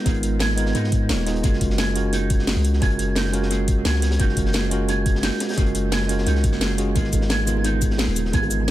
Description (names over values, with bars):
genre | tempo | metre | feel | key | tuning
liquid drum and bass | 174 BPM | 4/4 | straight | unclear | A4 = 441 Hz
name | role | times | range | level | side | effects
bell-like tine electric piano | accompaniment | 0.0-8.7 s | G#3 to A#4 | -25 LUFS | right 2 dB | medium stereo tremolo, analog delay
electric guitar with an envelope filter | arpeggios | 0.1-8.7 s | D#4 to G#5 | -30 LUFS | right 4 dB | spring reverb, dub echo
long sustained 808-style bass | bass | 0.1-8.7 s | D#1 to G#2 | -23 LUFS | equal | none
crunchy breakbeat drum kit | drums | 0.1-8.7 s | hi-hat, snare drum | -33 LUFS | equal | high-pass filter on hats, high-pass filter on snare, high-pass filter on room, analog delay
drum and bass drum kit | drums | 0.1-8.7 s | hi-hat, shaker, snare drum | -27 LUFS | equal | analog delay
electronic kick drum | drums | 0.1-8.4 s | none | -22 LUFS | equal | none
congas and bongos | percussion | 7.0-8.7 s | none | -33 LUFS | right 2 dB | none
room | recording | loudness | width
studio ambience | echo-heavy mix | -18 LUFS | side -14 dB against mid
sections
0.0-8.7 A section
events
break 6.6-7.0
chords
0.0 G#m69; 1.4 F#maj9; 7.0 G#m69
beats
| 0.06 0.41 0.75 1.09 | 1.44 1.78 2.13 2.47 | 2.82 3.16 3.51 3.85 | 4.20 4.54 4.89 5.23 | 5.58 5.92 6.27 6.61 | 6.96 7.30 7.65 7.99 | 8.34 8.68